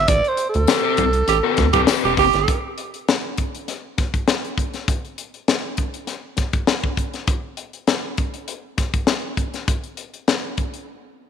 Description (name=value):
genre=funk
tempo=100 BPM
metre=4/4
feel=straight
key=A dorian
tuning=A4 = 440 Hz
part: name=breathy alto saxophone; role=melody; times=0.0-1.9 s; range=A4+20c to D5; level=-20 LUFS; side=right 2 dB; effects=none
part: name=rubbery square bass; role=bass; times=0.0-2.5 s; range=E1 to D2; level=-21 LUFS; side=right 2 dB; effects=none
part: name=tight funk drum kit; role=drums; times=0.1-10.9 s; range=hi-hat, kick drum, snare drum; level=-21 LUFS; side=left 3 dB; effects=none
part: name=crunchy overdriven guitar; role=accompaniment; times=0.7-2.2 s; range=C4 to C5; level=-22 LUFS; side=left 12 dB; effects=none
part: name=tambourine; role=percussion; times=0.7-2.0 s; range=none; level=-33 LUFS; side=left 13 dB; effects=none
part: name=growling tenor saxophone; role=second line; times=1.3-2.6 s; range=G4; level=-20 LUFS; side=right 16 dB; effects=none
room=light reverb, small room ambience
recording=1960s-style stereo with parts hard left and right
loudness=-19 LUFS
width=side -7 dB against mid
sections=0.0-2.5 A section; 2.5-11.3 B section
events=alto saxophone solo 0.0-2.5; band accent 0.1-2.5; break 10.9-11.3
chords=0.0 Am9; 2.5 N.C.